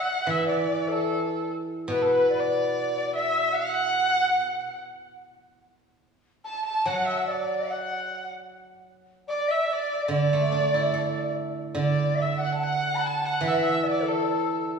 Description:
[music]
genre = chinese traditional, Chinese chamber ensemble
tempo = 73 BPM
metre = 2/4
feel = straight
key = D gong mode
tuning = A4 = 437 Hz
[part]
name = warm erhu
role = melody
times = 0.0-14.7 s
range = A4 to A5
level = -28 LUFS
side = right 1 dB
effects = none
[part]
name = large dizi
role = second line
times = 0.0-14.7 s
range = A4 to B5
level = -28 LUFS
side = left 2 dB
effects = none
[part]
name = steel-string zither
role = accompaniment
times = 0.3-4.4, 6.9-14.8 s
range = B2 to A4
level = -27 LUFS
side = right 3 dB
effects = none
[sound]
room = wet recital hall reverb, RT60 1.8 s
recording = heard from further back in the room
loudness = -23 LUFS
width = side -5 dB against mid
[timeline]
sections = 0.0-11.8 A section; 11.8-14.8 B section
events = none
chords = none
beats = | 0.29 1.10 | 1.92 2.73 | 3.55 4.37 | 5.21 6.04 | 6.86 7.68 | 8.49 9.29 | 10.11 10.94 | 11.78 12.61 | 13.44 14.26

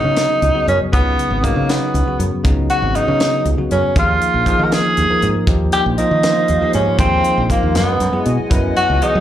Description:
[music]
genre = electric jazz fusion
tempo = 79 BPM (dotted quarters)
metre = 6/8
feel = straight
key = unclear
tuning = A4 = 440 Hz
[part]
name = warm tenor saxophone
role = melody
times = 0.0-9.2 s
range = A#3 to A#4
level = -17 LUFS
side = equal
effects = slapback echo
[part]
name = bell-like tine electric piano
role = accompaniment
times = 0.0-9.2 s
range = C#3 to B4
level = -20 LUFS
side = left 1 dB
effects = slapback echo
[part]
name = modern bright fingered electric bass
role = bass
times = 0.0-9.2 s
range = G#1 to F#3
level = -18 LUFS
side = equal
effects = none
[part]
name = tight funk drum kit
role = drums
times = 0.2-9.1 s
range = hi-hat, kick drum, snare drum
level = -19 LUFS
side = equal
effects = none
[part]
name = hollow soft pad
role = sustained chords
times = 5.9-9.2 s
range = G#3 to B#5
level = -27 LUFS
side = equal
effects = chorus
[sound]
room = little or no reverb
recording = live gig heard through the venue's PA, club reverb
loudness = -13 LUFS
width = side -11 dB against mid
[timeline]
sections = 0.0-9.2 A section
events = none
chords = 0.0 C#9sus4; 4.0 D#sus24; 7.8 F#13sus4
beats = 0.17 | 0.93 1.69 | 2.45 3.21 | 3.96 4.72 | 5.48 6.24 | 7.00 7.76 | 8.51

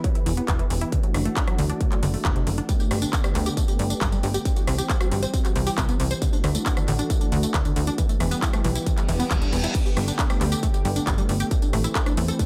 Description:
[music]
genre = uplifting trance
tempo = 136 BPM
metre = 4/4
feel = straight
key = G major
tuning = A4 = 440 Hz
[part]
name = lush unison pad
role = sustained chords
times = 0.0-12.5 s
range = D3 to B4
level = -32 LUFS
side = equal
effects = chorus, sidechain pumping
[part]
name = tight sequenced synth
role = arpeggios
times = 0.0-12.4 s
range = A2 to C5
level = -32 LUFS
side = equal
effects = chorus, sidechain pumping, analog delay
[part]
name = electronic kick drum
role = drums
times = 0.0-12.5 s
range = none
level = -26 LUFS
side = equal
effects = distortion
[part]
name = techno drum kit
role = drums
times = 0.0-12.5 s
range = crash cymbal, handclaps, hi-hat, rim click, tambourine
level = -33 LUFS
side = equal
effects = none
[part]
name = tight sequencer bass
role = bass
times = 0.3-12.3 s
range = D1 to E2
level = -28 LUFS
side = equal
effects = sidechain pumping
[part]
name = reverse cymbal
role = sound effects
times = 9.1-9.7 s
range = none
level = -35 LUFS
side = equal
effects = none
[sound]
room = light reverb, digital ambience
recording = none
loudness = -23 LUFS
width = mono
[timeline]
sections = 0.0-12.5 A section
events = filter sweep on analog synth pad 0.0-12.5; reverse cymbal 9.1-9.7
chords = 0.0 Em; 0.9 Dadd9/F#; 2.7 Gadd9; 4.5 C; 6.2 Dadd9; 8.0 Em; 9.7 Gadd9; 11.5 Am7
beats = 0.04 0.48 | 0.92 1.37 1.81 2.25 | 2.69 3.13 3.57 4.01 | 4.45 4.89 5.34 5.78 | 6.22 6.66 7.10 7.54 | 7.98 8.42 8.87 9.31 | 9.75 10.19 10.63 11.07 | 11.51 11.95 12.39

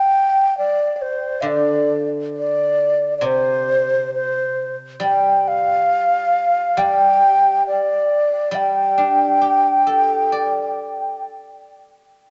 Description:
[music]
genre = chinese traditional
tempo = 68 BPM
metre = 4/4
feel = straight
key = G shang mode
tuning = A4 = 440 Hz
[part]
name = mellow hollow xiao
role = melody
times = 0.0-11.2 s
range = C5 to G5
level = -18 LUFS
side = equal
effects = none
[part]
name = guzheng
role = accompaniment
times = 0.0-12.2 s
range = C3 to D5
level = -28 LUFS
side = equal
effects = none
[sound]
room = wet plate reverb, RT60 3.0 s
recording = nothing above 8.0 kHz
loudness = -18 LUFS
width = mono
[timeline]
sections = 0.0-12.2 A section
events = none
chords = none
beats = 0.58 | 1.47 2.36 3.25 4.13 | 5.01 5.89 6.78 7.66 | 8.54 9.43 10.33 11.24

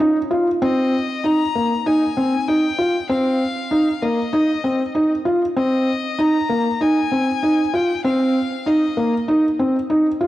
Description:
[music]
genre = electronica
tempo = 97 BPM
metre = 4/4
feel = straight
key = Ab major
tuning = A4 = 440 Hz
[part]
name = felt-muted upright piano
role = riff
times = 0.0-10.3 s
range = Bb3 to F4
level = -17 LUFS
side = equal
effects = cassette tape
[part]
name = rich violin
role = melody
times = 0.6-9.3 s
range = Eb5 to Bb5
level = -26 LUFS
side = left 7 dB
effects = none
[sound]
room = moderate lush hall reverb, RT60 2.5 s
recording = home recording on cassette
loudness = -16 LUFS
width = side -14 dB against mid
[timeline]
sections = 0.6-10.3 A section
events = drop 0.6-10.3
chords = 0.0 Cmadd11 (rootless); 0.6 Abadd9 (rootless)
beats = 0.00 | 0.62 1.24 1.86 2.48 | 3.10 3.71 4.33 4.95 | 5.57 6.19 6.81 7.42 | 8.04 8.66 9.28 9.90

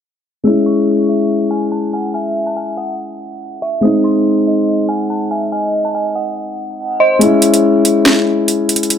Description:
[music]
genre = hip hop, drill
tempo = 142 BPM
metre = 4/4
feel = half-time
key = C# harmonic minor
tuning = A4 = 443 Hz
[part]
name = dark baby grand piano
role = accompaniment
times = 0.4-9.0 s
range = G#3 to E4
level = -14 LUFS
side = left 2 dB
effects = low-pass filter
[part]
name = dark detuned synth bell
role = melody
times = 0.5-7.2 s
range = D#5 to E6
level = -20 LUFS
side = right 1 dB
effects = chorus, ping-pong delay
[part]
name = hollow clarinet-like synth lead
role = second line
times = 1.1-7.2 s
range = B#4 to G#5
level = -23 LUFS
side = right 1 dB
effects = chorus, ping-pong delay
[part]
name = drill drum kit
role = drums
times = 7.2-9.0 s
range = hi-hat, snare drum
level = -14 LUFS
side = right 1 dB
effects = none
[sound]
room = digital ambience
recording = low-pass filter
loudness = -12 LUFS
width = side -8 dB against mid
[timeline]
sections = 0.5-7.2 A section; 7.2-9.0 B section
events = filter sweep 0.5-7.2; kick muted 7.2-9.0; filter sweep on grand piano 7.2-9.0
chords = 0.5 C#m; 3.8 G#; 7.2 C#m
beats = | 0.45 0.87 1.30 1.72 | 2.14 2.56 2.99 3.41 | 3.83 4.25 4.68 5.10 | 5.52 5.94 6.37 6.79 | 7.21 7.63 8.06 8.48 | 8.90

